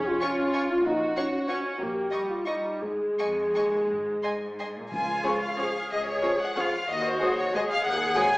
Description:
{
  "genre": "classical",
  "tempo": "159-204 BPM",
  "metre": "3/4",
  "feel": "rubato",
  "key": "Db major",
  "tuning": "A4 = 440 Hz",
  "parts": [
    { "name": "rich chamber viola section", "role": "accompaniment", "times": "0.0-8.2 s", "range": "F3 to Gb4", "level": "-34 LUFS", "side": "right 1 dB", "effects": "none" },
    { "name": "mellow French horn section", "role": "sustained chords", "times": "0.0-8.3 s", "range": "Ab3 to Ab4", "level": "-27 LUFS", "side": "equal", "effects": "none" },
    { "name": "rich chamber double bass section", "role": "bass", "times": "0.0-8.1 s", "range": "F1 to Eb2", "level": "-41 LUFS", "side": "right 1 dB", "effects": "none" },
    { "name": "warm chamber cello section", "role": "bass", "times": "0.0-8.4 s", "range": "Eb2 to Ab4", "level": "-32 LUFS", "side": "equal", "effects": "none" },
    { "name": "warm chamber violin section", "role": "melody", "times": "0.2-8.4 s", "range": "C5 to Db6", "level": "-29 LUFS", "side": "left 1 dB", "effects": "none" },
    { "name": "warm chamber violin section", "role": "second line", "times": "0.2-8.2 s", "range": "Ab4 to Ab5", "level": "-36 LUFS", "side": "equal", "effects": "none" },
    { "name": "timpani", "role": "percussion", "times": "4.9-5.4 s", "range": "Db3", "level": "-41 LUFS", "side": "equal", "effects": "none" },
    { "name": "mellow clarinet", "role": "second line", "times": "5.2-8.3 s", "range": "Ab4", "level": "-36 LUFS", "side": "equal", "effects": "none" },
    { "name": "mellow bassoon", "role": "accompaniment", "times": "5.2-8.3 s", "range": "F3 to Gb3", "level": "-35 LUFS", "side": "equal", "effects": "none" },
    { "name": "flute section", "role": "second line", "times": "5.3-8.2 s", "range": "Db6 to Eb6", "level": "-35 LUFS", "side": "equal", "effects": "none" }
  ],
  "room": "wet recital hall reverb, RT60 1.4 s",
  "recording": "recorded in a church or concert hall, small speaker sound",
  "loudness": "-24 LUFS",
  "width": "side -21 dB against mid",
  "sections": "0.0-4.9 A section; 4.9-8.4 B section",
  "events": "none",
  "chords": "0.0 Db/F; 0.8 Gb/Bb; 1.8 Eb/Bb; 2.8 Ab5; 3.9 N.C.; 4.9 Db; 6.9 Ab7/Eb",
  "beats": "0.21 0.54 | 0.85 1.16 1.49 | 1.80 2.12 2.46 | 2.82 3.18 3.55 | 3.89 4.23 4.58 | 4.92 5.25 5.58 | 5.90 6.23 6.56 | 6.88 7.21 7.54 | 7.85 8.16"
}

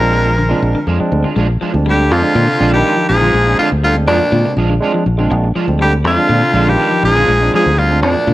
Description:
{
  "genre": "afrobeat",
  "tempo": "122 BPM",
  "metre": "4/4",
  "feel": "straight",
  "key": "Bb mixolydian",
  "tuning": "A4 = 439 Hz",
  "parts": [
    { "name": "raspy tenor saxophone", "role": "melody", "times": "0.0-8.3 s", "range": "D4 to Bb4", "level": "-15 LUFS", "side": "equal", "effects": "cassette tape, analog delay" },
    { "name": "bright baritone saxophone", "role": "second line", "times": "0.0-8.3 s", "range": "D2 to Bb2", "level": "-22 LUFS", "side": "left 4 dB", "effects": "plate reverb" },
    { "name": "trombone with bucket mute", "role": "second line", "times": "0.0-8.3 s", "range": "Bb2 to F3", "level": "-22 LUFS", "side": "right 1 dB", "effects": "none" },
    { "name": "barky tine electric piano", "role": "accompaniment", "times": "0.0-8.3 s", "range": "Ab3 to F4", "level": "-20 LUFS", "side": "right 3 dB", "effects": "overdrive" },
    { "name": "clean electric guitar", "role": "arpeggios", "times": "0.0-8.3 s", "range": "C3 to Ab3", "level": "-23 LUFS", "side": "left 4 dB", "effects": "spring reverb" },
    { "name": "electric guitar at the edge of break-up", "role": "stabs", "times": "0.0-8.3 s", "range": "F3 to F4", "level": "-23 LUFS", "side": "right 4 dB", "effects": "ensemble chorus" },
    { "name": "fingered electric bass", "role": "bass", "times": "0.0-8.3 s", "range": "Bb1 to Bb2", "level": "-15 LUFS", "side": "equal", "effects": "none" }
  ],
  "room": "moderate studio reverb, RT60 0.6 s",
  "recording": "home recording on cassette",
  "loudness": "-11 LUFS",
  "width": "side -16 dB against mid",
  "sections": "0.0-1.4 A section; 1.4-8.3 B section",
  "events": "none",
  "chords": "0.0 Bb7",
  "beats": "0.38 0.87 | 1.36 1.86 2.35 2.85 | 3.34 3.83 4.33 4.82 | 5.31 5.81 6.30 6.79 | 7.29 7.78 8.28"
}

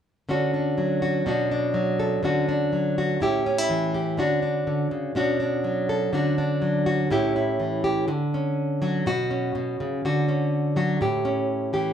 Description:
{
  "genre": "highlife",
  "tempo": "123 BPM",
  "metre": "4/4",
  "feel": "straight",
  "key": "D major",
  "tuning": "A4 = 440 Hz",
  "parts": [
    { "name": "nylon-string guitar", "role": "solo", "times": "0.3-11.9 s", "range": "A2 to A4", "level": "-22 LUFS", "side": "equal", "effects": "none" }
  ],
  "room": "moderate large studio reverb, RT60 1.2 s",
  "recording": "band playing live in one room",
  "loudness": "-22 LUFS",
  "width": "side -8 dB against mid",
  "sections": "0.3-8.1 A section; 8.1-11.9 B section",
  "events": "none",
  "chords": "0.3 Dmaj7; 1.3 Bmadd9; 2.2 Dmaj7; 3.2 A7; 4.2 Dmaj7; 5.2 Bmadd9; 6.1 Dmaj7; 7.1 A7; 8.1 Dmaj7; 9.1 Bsus2; 10.0 Dmaj7; 11.0 A7",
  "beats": "| 0.28 0.77 1.25 1.74 | 2.23 2.72 3.21 3.70 | 4.18 4.67 5.16 5.65 | 6.14 6.63 7.12 7.60 | 8.09 8.58 9.06 9.55 | 10.04 10.52 11.01 11.50"
}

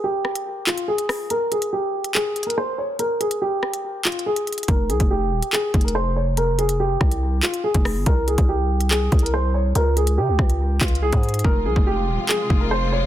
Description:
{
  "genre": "hip hop, drill",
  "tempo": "142 BPM",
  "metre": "4/4",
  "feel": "half-time",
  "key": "F minor",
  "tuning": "A4 = 440 Hz",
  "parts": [
    { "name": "dark grand piano", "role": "melody", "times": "0.0-13.1 s", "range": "F4 to Db5", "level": "-23 LUFS", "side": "equal", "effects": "low-pass filter, ping-pong delay" },
    { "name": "drill drum kit", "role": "drums", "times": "0.2-12.6 s", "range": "handclaps, hi-hat, kick drum, rim click", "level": "-21 LUFS", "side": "equal", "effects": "none" },
    { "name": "growling 808-style bass", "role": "bass", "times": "4.7-13.1 s", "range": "Eb1 to Db3", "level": "-21 LUFS", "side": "equal", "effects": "none" },
    { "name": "warm symphonic string section", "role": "sustained chords", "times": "11.5-13.1 s", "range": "C3 to F4", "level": "-28 LUFS", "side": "left 2 dB", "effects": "none" }
  ],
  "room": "light reverb",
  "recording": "dense, heavily limited modern master",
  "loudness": "-18 LUFS",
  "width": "side -12 dB against mid",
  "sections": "0.0-13.1 A section",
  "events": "break 0.0-4.7; filter sweep on grand piano 0.0-11.4; hi-hats muted 11.4-13.1",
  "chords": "0.0 N.C.; 4.7 Fm; 8.1 C5; 9.8 Db5; 11.4 Fm",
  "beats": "0.04 0.46 0.88 | 1.30 1.73 2.15 2.57 | 2.99 3.42 3.84 4.26 | 4.68 5.11 5.53 5.95 | 6.37 6.80 7.22 7.64 | 8.06 8.49 8.91 9.33 | 9.75 10.18 10.60 11.02 | 11.44 11.87 12.29 12.71"
}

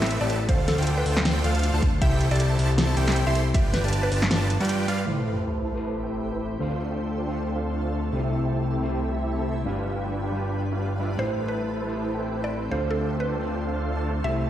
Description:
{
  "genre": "future bass",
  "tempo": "157 BPM",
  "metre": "4/4",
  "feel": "swing 55% on 16ths, half-time",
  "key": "unclear",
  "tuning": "A4 = 440 Hz",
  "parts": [
    { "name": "airy dreamy lead", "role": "arpeggios", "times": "0.0-5.0 s", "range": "E5 to C6", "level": "-35 LUFS", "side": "right 1 dB", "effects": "chorus, sidechain pumping" },
    { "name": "supersaw chords", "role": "riff", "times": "0.0-14.5 s", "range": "C4 to C6", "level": "-30 LUFS", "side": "right 1 dB", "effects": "sidechain pumping, low-pass filter, digital delay" },
    { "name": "fat analog bass", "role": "bass", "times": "0.0-14.5 s", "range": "G1 to G2", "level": "-26 LUFS", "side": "equal", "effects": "sidechain pumping" },
    { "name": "pop drum kit", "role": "drums", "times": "0.0-5.0 s", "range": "hi-hat, snare drum", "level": "-27 LUFS", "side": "equal", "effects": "low-pass filter on hats, low-pass filter on snare" },
    { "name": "mallet-like synth pluck", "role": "melody", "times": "0.2-4.2, 11.2-14.4 s", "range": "A4 to E5", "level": "-32 LUFS", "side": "right 1 dB", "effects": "chorus, sidechain pumping, tape echo" },
    { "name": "electronic kick drum", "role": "drums", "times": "0.5-3.6 s", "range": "none", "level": "-22 LUFS", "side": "equal", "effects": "none" },
    { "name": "mellow electric guitar", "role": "accompaniment", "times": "5.1-14.5 s", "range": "C3 to D5", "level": "-31 LUFS", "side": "left 2 dB", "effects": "spring reverb, sidechain pumping, digital delay" },
    { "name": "shimmering ambient pad", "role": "sustained chords", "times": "5.7-14.5 s", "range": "C3 to B4", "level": "-37 LUFS", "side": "equal", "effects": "chorus, built-in reverb, sidechain pumping" },
    { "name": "sub drop", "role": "sound effects", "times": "5.1-6.6 s", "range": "none", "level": "-32 LUFS", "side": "right 1 dB", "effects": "none" }
  ],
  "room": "light reverb",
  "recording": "played on a big sound system in a bare room, stone room reverb",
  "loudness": "-23 LUFS",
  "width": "side -11 dB against mid",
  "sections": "0.0-5.1 A section; 5.1-14.5 B section",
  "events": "drop 0.0-5.1; kick drops out 4.7-5.1; impact 5.1-6.6",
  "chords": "0.5 Dm7; 2.0 C6; 3.5 G7; 5.1 Am9; 6.6 Dm7; 8.1 C6; 9.7 G7; 11.2 Am9; 12.7 Dm7",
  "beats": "0.10 | 0.49 0.87 1.25 1.63 | 2.02 2.40 2.78 3.16 | 3.54 3.93 4.31 4.69 | 5.07 5.46 5.84 6.22 | 6.60 6.98 7.37 7.75 | 8.13 8.51 8.89 9.28 | 9.66 10.04 10.42 10.81 | 11.19 11.57 11.95 12.33 | 12.72 13.10 13.48 13.86 | 14.24"
}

